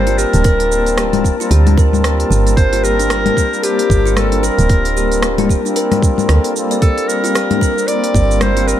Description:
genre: organic downtempo.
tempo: 113 BPM.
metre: 4/4.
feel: swing 59% on 16ths.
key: G minor.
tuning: A4 = 444 Hz.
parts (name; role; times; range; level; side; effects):
warm clarinet; melody; 0.0-8.8 s; G4 to D5; -20 LUFS; equal; ping-pong delay.
hand-pumped harmonium; accompaniment; 0.0-8.8 s; G3 to Bb4; -22 LUFS; left 2 dB; sidechain pumping, digital delay.
warm analog pad; sustained chords; 0.0-8.8 s; G3 to A5; -23 LUFS; equal; chorus, tremolo, sidechain pumping.
kalimba; arpeggios; 0.0-8.8 s; D4 to D5; -20 LUFS; left 1 dB; digital delay.
woody FM bass; bass; 0.0-8.7 s; D1 to D2; -15 LUFS; right 1 dB; sidechain pumping.
organic electronic drum kit; drums; 0.1-8.8 s; congas, hi-hat, rim click, shaker; -20 LUFS; left 4 dB; none.
electronic kick drum; drums; 0.4-8.3 s; none; -13 LUFS; right 1 dB; none.
room: light reverb, small room reverb.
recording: none.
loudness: -11 LUFS.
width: side -11 dB against mid.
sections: 0.0-8.8 A section.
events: none.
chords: 0.0 Gmadd9.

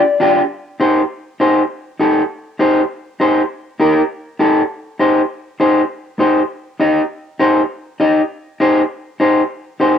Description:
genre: latin.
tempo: 200 BPM.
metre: 4/4.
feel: straight.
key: C dorian.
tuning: A4 = 439 Hz.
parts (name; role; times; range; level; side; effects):
electric guitar at the edge of break-up; accompaniment; 0.2-10.0 s; D4 to Eb5; -13 LUFS; left 1 dB; none.
room: moderate spring reverb, RT60 1.1 s, small room ambience.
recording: home recording on cassette.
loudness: -14 LUFS.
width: side -8 dB against mid.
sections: 0.5-10.0 A section.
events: none.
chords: 0.0 Bb (rootless); 0.5 Cm.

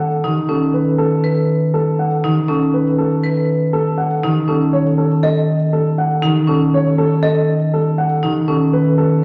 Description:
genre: classical, minimalist pattern music.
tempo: 120 BPM.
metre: 4/4.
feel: straight.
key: unclear.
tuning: A4 = 441 Hz.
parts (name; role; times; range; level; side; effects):
dark baby grand piano; melody; 0.0-9.2 s; A4 to F#5; -22 LUFS; equal; none.
concert harp; accompaniment; 0.0-9.2 s; D#3; -19 LUFS; equal; none.
marimba with hard mallets; arpeggios; 0.2-8.8 s; C#4 to B4; -22 LUFS; equal; none.
room: wet recital hall reverb, RT60 1.4 s.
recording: none.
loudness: -16 LUFS.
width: mono.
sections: 0.0-9.2 A section.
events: none.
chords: 0.2 B7; 4.2 A; 8.2 B7.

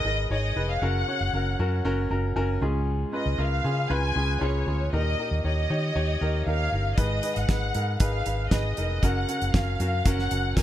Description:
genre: piano-driven pop.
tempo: 117 BPM.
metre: 4/4.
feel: straight.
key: Db mixolydian.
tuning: A4 = 438 Hz.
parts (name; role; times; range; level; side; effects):
warm studio violin section; melody; 0.0-10.6 s; Db5 to Ab5; -30 LUFS; left 1 dB; none.
clear concert grand piano; accompaniment; 0.0-10.6 s; Ab2 to Bb5; -30 LUFS; equal; none.
vintage muted fingered electric bass; bass; 0.0-10.6 s; F1 to Eb3; -26 LUFS; equal; none.
damped 70s drum kit; drums; 7.0-10.6 s; hi-hat, kick drum, snare drum; -25 LUFS; equal; none.
room: studio reverb.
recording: none.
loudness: -23 LUFS.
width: side -12 dB against mid.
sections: 0.0-10.6 A section.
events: grand piano fill 1.8-2.9.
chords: 0.0 Abm; 0.8 Gb; 2.6 Db; 4.9 Eb; 7.0 Abm; 9.0 Gb.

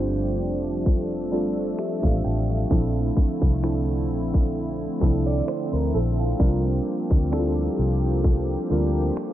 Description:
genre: contemporary R&B.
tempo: 65 BPM.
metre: 4/4.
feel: swing 54% on 16ths.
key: unclear.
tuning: A4 = 439 Hz.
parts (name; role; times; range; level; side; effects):
warm analog keys; accompaniment; 0.0-9.3 s; F3 to G5; -26 LUFS; equal; chorus.
lush unison pad; sustained chords; 0.0-9.3 s; D3 to A4; -30 LUFS; equal; chorus.
vintage muted fingered electric bass; bass; 0.0-9.1 s; F1 to D2; -25 LUFS; equal; none.
trap drum kit; drums; 0.4-9.3 s; finger snaps, hi-hat, kick drum; -20 LUFS; equal; none.
picked old ladder-braced acoustic guitar; arpeggios; 5.3-6.6 s; F4 to D5; -30 LUFS; right 3 dB; digital delay.
room: light reverb.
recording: low-pass filter.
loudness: -21 LUFS.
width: side -12 dB against mid.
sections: 0.0-9.3 A section.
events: none.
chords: 0.0 F69; 2.7 Bbmaj9#11; 6.4 C7sus4.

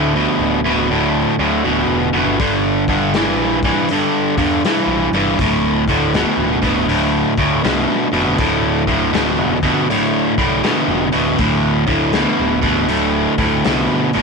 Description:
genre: blues rock power trio and southern rock.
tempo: 80 BPM.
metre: 4/4.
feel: swing 65% on 8ths.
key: D minor.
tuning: A4 = 440 Hz.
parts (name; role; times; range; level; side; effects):
cranked stack guitar; riff; 0.0-14.2 s; D2 to E3; -14 LUFS; equal; overdrive.
fuzz picked electric bass; bass; 0.0-14.2 s; D1 to E2; -24 LUFS; equal; overdrive.
raw garage drum kit; drums; 2.4-14.2 s; hi-hat, kick drum, snare drum; -24 LUFS; left 3 dB; none.
room: small room ambience.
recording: 1960s-style stereo.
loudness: -14 LUFS.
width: side -4 dB against mid.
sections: 0.0-14.2 A section.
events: none.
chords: 0.0 D5; 2.4 Gm; 5.4 D5.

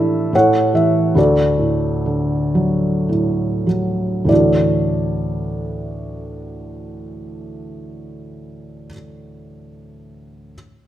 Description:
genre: classical, lyrical solo piano.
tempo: 47-78 BPM.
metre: 3/4.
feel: rubato.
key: D major.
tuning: A4 = 440 Hz.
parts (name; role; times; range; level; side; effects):
felt-muted upright piano; solo; 0.0-10.6 s; D2 to F#5; -17 LUFS; equal; none.
room: moderate recital hall reverb, RT60 1.3 s.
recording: none.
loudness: -15 LUFS.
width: side -12 dB against mid.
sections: 0.0-4.3 A section; 4.3-8.0 B section.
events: slowing down 0.0-4.3.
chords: 0.3 A; 1.2 D; 4.3 Dadd9.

